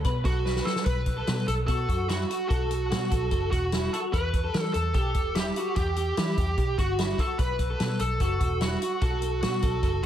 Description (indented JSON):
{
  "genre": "jangly indie pop",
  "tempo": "147 BPM",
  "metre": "4/4",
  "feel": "straight",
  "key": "unclear",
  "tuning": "A4 = 440 Hz",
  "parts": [
    { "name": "electric guitar through a small old amp", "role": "arpeggios", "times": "0.0-10.1 s", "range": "E4 to B4", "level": "-32 LUFS", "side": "left 3 dB", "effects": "ensemble chorus, dub echo" },
    { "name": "vintage drum kit", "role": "drums", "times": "0.0-10.1 s", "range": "hi-hat, kick drum, snare drum", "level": "-28 LUFS", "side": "equal", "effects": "none" },
    { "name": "vintage muted picked electric bass", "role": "bass", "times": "0.1-10.1 s", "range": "E1 to E3", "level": "-29 LUFS", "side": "equal", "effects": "none" },
    { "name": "high-gain lead guitar", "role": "melody", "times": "0.2-10.0 s", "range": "F#4 to B4", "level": "-30 LUFS", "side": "right 3 dB", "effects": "distortion, dub echo" }
  ],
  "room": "light reverb, small room ambience",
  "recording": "echo-heavy mix",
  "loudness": "-24 LUFS",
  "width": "side -10 dB against mid",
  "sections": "0.9-10.1 A section",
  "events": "drum fill 0.5-0.9",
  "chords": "0.0 B5; 4.1 Em; 7.4 B5"
}